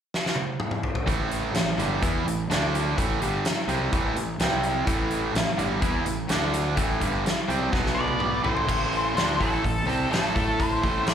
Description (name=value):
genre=classic rock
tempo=126 BPM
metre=4/4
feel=straight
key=A minor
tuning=A4 = 440 Hz
part: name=huge arena drum kit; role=drums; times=0.1-11.1 s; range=crash cymbal, hi-hat, kick drum, snare drum, toms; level=-27 LUFS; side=equal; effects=none
part: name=distorted electric guitar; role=riff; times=1.1-11.1 s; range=G2 to A4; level=-28 LUFS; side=right 8 dB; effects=overdrive, slapback echo
part: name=overdriven electric guitar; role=riff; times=1.1-11.1 s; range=G2 to A4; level=-31 LUFS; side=left 10 dB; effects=slapback echo
part: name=fuzz fingered electric bass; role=bass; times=1.1-11.1 s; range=G1 to A2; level=-30 LUFS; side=equal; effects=overdrive
part: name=octave-fuzz lead guitar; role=melody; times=7.9-11.1 s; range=A4 to D5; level=-27 LUFS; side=left 2 dB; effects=distortion, plate reverb
room=moderate club reverb, RT60 0.7 s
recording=live gig heard through the venue's PA, club reverb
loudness=-22 LUFS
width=side -8 dB against mid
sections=0.0-1.1 A section; 1.1-8.7 B section; 8.7-11.1 C section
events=drum fill 0.1-1.1, 7.7-8.7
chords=0.0 N.C.; 1.1 A5; 2.5 D5; 3.0 Am; 4.4 C5; 4.9 A5; 6.3 D5; 6.8 Am; 7.7 B5; 8.4 Am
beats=0.12 0.60 | 1.07 1.55 2.02 2.50 | 2.97 3.45 3.92 4.40 | 4.87 5.35 5.82 6.30 | 6.78 7.25 7.73 8.21 | 8.68 9.16 9.64 10.11 | 10.59 11.07